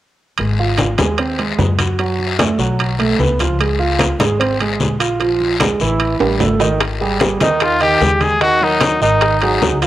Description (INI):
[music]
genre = Afro-Cuban jazz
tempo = 149 BPM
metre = 4/4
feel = straight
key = unclear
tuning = A4 = 440 Hz
[part]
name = warm grand piano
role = accompaniment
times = 0.4-9.9 s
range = Eb3 to Gb5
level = -18 LUFS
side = right 3 dB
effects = none
[part]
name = upright bass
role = bass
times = 0.4-9.9 s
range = Ab1 to Gb2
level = -20 LUFS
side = left 1 dB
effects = none
[part]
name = congas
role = percussion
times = 0.4-9.8 s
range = none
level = -21 LUFS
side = left 2 dB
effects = none
[part]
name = guiro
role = percussion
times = 0.4-9.9 s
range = none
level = -25 LUFS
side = left 7 dB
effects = none
[part]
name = timbales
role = percussion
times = 0.4-9.9 s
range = none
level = -22 LUFS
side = right 5 dB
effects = none
[part]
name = bongos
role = percussion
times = 6.8-9.9 s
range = none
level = -23 LUFS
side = left 6 dB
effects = none
[part]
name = clear trumpet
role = melody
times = 7.4-9.8 s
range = Eb4 to Ab4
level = -15 LUFS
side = left 2 dB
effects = cassette tape
[sound]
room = moderate spring reverb, RT60 1.6 s, studio reverb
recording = home recording on cassette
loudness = -13 LUFS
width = side -13 dB against mid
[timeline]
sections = 0.4-6.8 A section; 6.8-9.9 B section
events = drum fill 6.2-6.8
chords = 0.4 Ab6; 2.0 Gbm; 2.8 Bsus2; 3.6 Dbmaj7; 5.2 Bb5; 6.0 A5; 6.8 Ab5; 8.4 Ebm; 9.2 Ab5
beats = | 0.38 0.78 1.19 1.59 | 1.99 2.39 2.79 3.19 | 3.60 4.00 4.40 4.80 | 5.20 5.60 6.00 6.41 | 6.81 7.21 7.61 8.01 | 8.41 8.82 9.22 9.62